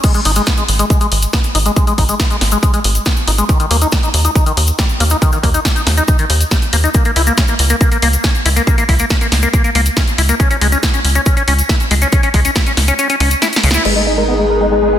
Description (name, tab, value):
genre	uplifting trance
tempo	139 BPM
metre	4/4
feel	straight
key	unclear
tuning	A4 = 440 Hz
part	liquid acid bass	arpeggios	0.0-15.0 s	C#3 to E4	-17 LUFS	left 2 dB	chorus, sidechain pumping, tape echo
part	electronic kick drum	drums	0.0-12.6 s	none	-14 LUFS	equal	none
part	punchy analog drum machine	drums	0.0-13.9 s	crash cymbal, hi-hat, snare drum	-18 LUFS	equal	sidechain pumping on hats, sidechain pumping on cymbals
part	tube shaker	percussion	0.0-13.8 s	none	-25 LUFS	left 4 dB	none
part	tight sequencer bass	bass	0.3-15.0 s	G#1 to D#2	-15 LUFS	equal	sidechain pumping
part	big supersaw lead	melody	13.9-15.0 s	D#4 to B4	-18 LUFS	right 2 dB	sidechain pumping, low-pass filter, tape echo
part	warm velvety synth lead	second line	13.9-15.0 s	G#4	-16 LUFS	left 3 dB	chorus, dub echo
part	lush unison pad	sustained chords	13.9-15.0 s	D#3 to B3	-23 LUFS	right 1 dB	chorus, sidechain pumping
room	light reverb, digital ambience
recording	dense, heavily limited modern master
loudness	-11 LUFS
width	side -11 dB against mid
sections	0.0-13.9 A section; 13.9-15.0 B section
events	filter sweep on acid bass 0.0-13.9, 13.9-15.0; kick drops out 13.0-13.9; drum fill 13.4-13.9; band accent 13.7; filter sweep on supersaw synth 13.9-15.0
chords	0.0 N.C.; 6.9 A#m/C#; 10.4 N.C.; 13.9 G#m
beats	| 0.04 0.47 0.90 1.33 | 1.76 2.20 2.63 3.06 | 3.49 3.92 4.36 4.79 | 5.22 5.65 6.08 6.51 | 6.95 7.38 7.81 8.24 | 8.67 9.10 9.54 9.97 | 10.40 10.83 11.26 11.69 | 12.12 12.56 12.99 13.42 | 13.85 14.28 14.71